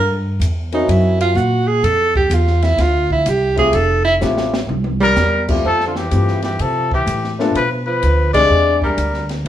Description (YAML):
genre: jazz, small-group swing and bop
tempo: 126 BPM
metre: 4/4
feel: swing 66% on 8ths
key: F major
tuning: A4 = 439 Hz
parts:
  - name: warm tenor saxophone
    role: second line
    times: 0.0-9.3 s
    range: D3 to Bb4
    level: -18 LUFS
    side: right 3 dB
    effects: none
  - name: upright bass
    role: bass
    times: 0.0-9.5 s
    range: F1 to C3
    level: -18 LUFS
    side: equal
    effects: none
  - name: compact cocktail drum kit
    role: drums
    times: 0.4-9.5 s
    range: crash cymbal, hi-hat, kick drum, ride cymbal, snare drum, toms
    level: -25 LUFS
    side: equal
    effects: none
  - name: dark grand piano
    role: accompaniment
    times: 0.7-9.0 s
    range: Ab3 to A4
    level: -21 LUFS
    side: left 3 dB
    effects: none
  - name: mellow trumpet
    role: melody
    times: 5.0-9.3 s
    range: F4 to D5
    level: -18 LUFS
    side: left 3 dB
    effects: none
room: moderate large studio reverb, RT60 0.9 s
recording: band playing live in one room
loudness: -14 LUFS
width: side -11 dB against mid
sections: 0.0-5.6 A section; 5.6-9.5 B section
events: tenor saxophone solo 0.0-5.6; drum fill 4.2-5.2; band accent 8.3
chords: 0.0 Gm; 0.9 Gb7#11; 1.8 Fmaj9; 4.7 C7; 5.6 Fmaj9; 7.6 Bdim; 8.5 E7alt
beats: 0.42 0.89 1.37 | 1.84 2.32 2.80 3.27 | 3.75 4.22 4.70 5.17 | 5.65 6.12 6.60 7.08 | 7.55 8.03 8.50 8.98 | 9.45